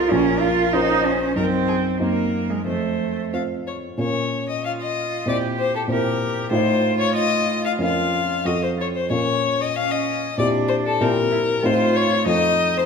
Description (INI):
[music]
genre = quick classical-period movement for piano trio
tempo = 94 BPM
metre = 2/4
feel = rubato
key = Bb minor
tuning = A4 = 440 Hz
[part]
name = rich violin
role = melody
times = 0.0-12.8 s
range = Ab4 to F5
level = -22 LUFS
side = left 6 dB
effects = none
[part]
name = rich cello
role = second line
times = 0.0-12.9 s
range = Ab3 to G4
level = -24 LUFS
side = right 4 dB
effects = none
[part]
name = dark grand piano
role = accompaniment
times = 0.0-12.9 s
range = Bb1 to C5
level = -23 LUFS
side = equal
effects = none
[sound]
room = wet scoring stage reverb, RT60 1.7 s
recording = minimal, uncompressed stereo recording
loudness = -18 LUFS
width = side -6 dB against mid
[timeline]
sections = 0.0-4.0 A section; 4.0-12.9 B section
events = none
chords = 0.1 Bbm; 1.4 Ebm/Gb; 2.0 Cm7b5/Gb; 2.7 F; 4.0 Bbm; 5.3 C7/Bb; 6.5 F7/A; 7.8 Bbm/F; 8.5 F; 9.1 Bbm; 10.4 C7/Bb; 11.6 F7/A; 12.3 F7